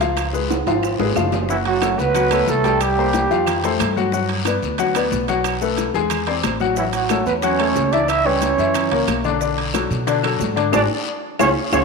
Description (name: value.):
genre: Afro-Cuban jazz.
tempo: 182 BPM.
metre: 4/4.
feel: straight.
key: F# minor.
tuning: A4 = 440 Hz.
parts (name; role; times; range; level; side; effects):
clear upright piano; accompaniment; 0.0-11.8 s; D3 to G#5; -21 LUFS; left 7 dB; none.
upright bass; bass; 0.0-11.8 s; Gb1 to B2; -25 LUFS; right 1 dB; none.
bongos; percussion; 0.0-11.8 s; none; -30 LUFS; left 10 dB; none.
congas; percussion; 0.0-11.8 s; none; -32 LUFS; right 1 dB; none.
guiro; percussion; 0.0-11.8 s; none; -33 LUFS; left 11 dB; none.
maracas; percussion; 0.0-11.8 s; none; -37 LUFS; right 16 dB; none.
timbales; percussion; 0.0-11.8 s; none; -27 LUFS; right 13 dB; none.
claves; percussion; 0.2-11.8 s; none; -32 LUFS; right 14 dB; none.
growling trumpet; melody; 1.5-3.8, 6.8-11.8 s; E4 to E5; -21 LUFS; right 3 dB; none.
warm trombone; second line; 1.5-3.8, 6.8-11.8 s; E3 to E4; -24 LUFS; right 10 dB; none.
room: wet echo chamber reverb, RT60 1.9 s, studio ambience.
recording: 1960s-style stereo with parts hard left and right.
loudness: -16 LUFS.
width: side -4 dB against mid.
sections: 0.0-1.5 A section; 1.5-11.8 B section.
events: drum fill 0.5-1.5, 10.7-11.8; band accent 10.7-11.8.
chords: 0.2 Db7; 1.5 F#m; 2.8 C5; 3.5 Fadd9; 4.1 Gmaj7; 5.4 B5; 6.1 Eaug7; 6.8 A6; 8.1 C#m7b5; 8.7 F#7; 9.4 Bm7; 10.7 D.